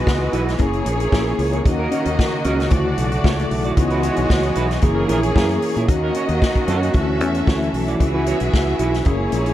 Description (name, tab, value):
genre	disco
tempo	113 BPM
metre	4/4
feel	straight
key	C# dorian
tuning	A4 = 440 Hz
part	warm studio violin section	second line	0.0-9.5 s	G#3 to E5	-24 LUFS	left 1 dB	none
part	tine electric piano	accompaniment	0.0-9.5 s	C#3 to G#4	-24 LUFS	left 2 dB	overdrive, fast stereo tremolo
part	clear symphonic string section	sustained chords	0.0-9.5 s	A#2 to D#5	-25 LUFS	right 1 dB	none
part	fingered electric bass	bass	0.0-9.5 s	F#1 to A#2	-22 LUFS	equal	none
part	clean electric guitar	accompaniment	0.1-9.5 s	C#4 to D5	-27 LUFS	right 6 dB	harmonic tremolo
part	vintage drum kit	drums	0.1-9.5 s	hi-hat, kick drum, snare drum	-20 LUFS	equal	none
room	light reverb, small room reverb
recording	dark, warm production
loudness	-16 LUFS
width	side -13 dB against mid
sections	0.0-9.5 A section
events	none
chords	0.0 C#m11; 0.6 F#9; 1.7 D#m7; 2.7 Dmaj9; 3.8 C#m11; 4.8 F#9; 5.9 D#m7; 6.9 Dmaj9; 8.0 C#m7